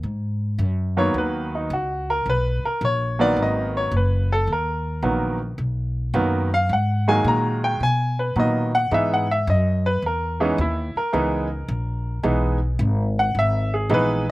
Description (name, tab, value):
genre	jazz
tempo	108 BPM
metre	4/4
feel	swing 68% on 8ths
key	G# minor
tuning	A4 = 441 Hz
part	upright bass	bass	0.0-14.3 s	F#1 to B2	-23 LUFS	equal	none
part	clear baby grand piano	melody	1.0-14.3 s	D#3 to A#5	-21 LUFS	equal	none
room	little or no reverb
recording	recorded outdoors, with no room sound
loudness	-19 LUFS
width	side -18 dB against mid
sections	0.0-14.3 A section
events	grand piano solo 0.0-14.3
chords	0.0 G#m7; 8.9 C#m7